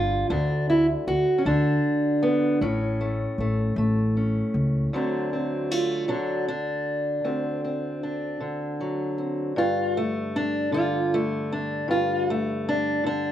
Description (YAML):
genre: blues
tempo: 52 BPM (dotted quarters)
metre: 12/8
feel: straight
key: D mixolydian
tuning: A4 = 439 Hz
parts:
  - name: fingerpicked steel-string acoustic guitar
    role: melody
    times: 0.0-13.3 s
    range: D2 to F#4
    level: -23 LUFS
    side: equal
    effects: slapback echo
  - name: upright bass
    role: bass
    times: 0.0-4.9 s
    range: G1 to D2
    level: -26 LUFS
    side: equal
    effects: none
room: light reverb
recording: recorded outdoors, with no room sound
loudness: -22 LUFS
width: side -11 dB against mid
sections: 0.0-4.9 A section; 4.9-13.3 B section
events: steel-string acoustic guitar solo 4.9-13.3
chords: 0.3 N.C.; 2.6 A; 4.9 D7; 9.6 G5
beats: | 0.30 1.46 2.62 3.78 | 4.93 6.09 7.25 8.41 | 9.57 10.73 11.89 13.05